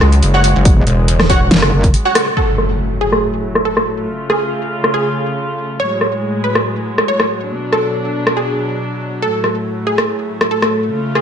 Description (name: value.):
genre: heavy wobble dubstep.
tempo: 140 BPM.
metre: 4/4.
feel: swing 53% on 16ths, half-time.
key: F# harmonic minor.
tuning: A4 = 440 Hz.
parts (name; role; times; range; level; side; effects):
warm studio string section; sustained chords; 0.0-11.2 s; A2 to E#4; -21 LUFS; left 1 dB; sidechain pumping, low-pass filter.
pulsing pluck wobble bass; bass; 0.0-1.5 s; E1 to C#2; -12 LUFS; equal; chorus, overdrive.
dubstep drum kit; drums; 0.0-11.2 s; hi-hat, rim click, snare drum; -16 LUFS; equal; overdrive, low-pass filter on hats, low-pass filter on snare, low-pass filter on room.
orchestra-hit-like synth stab; stabs; 0.3-2.2 s; F#4 to F#5; -19 LUFS; right 2 dB; built-in reverb, digital delay.
electronic kick drum; drums; 0.7-1.9 s; none; -12 LUFS; equal; none.
metallic wobble bass; bass; 0.8-1.9 s; E1 to F#1; -14 LUFS; equal; chorus, overdrive.
wide unison pluck; melody; 2.4-11.2 s; G#4 to C#5; -20 LUFS; right 1 dB; digital delay.
impact; sound effects; 2.4-4.1 s; none; -20 LUFS; equal; none.
room: light reverb.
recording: nothing above 10.3 kHz.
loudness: -13 LUFS.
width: side -8 dB against mid.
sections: 0.0-2.4 A section; 2.4-11.2 B section.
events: drop 0.0-2.4; break 1.9-2.4; band accent 2.2; impact 2.4-4.1; filter sweep on drum 2.4-11.2.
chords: 0.0 F#5; 2.4 F#madd9; 4.1 C#; 5.8 F#madd9; 7.5 Bm; 9.2 F#madd9.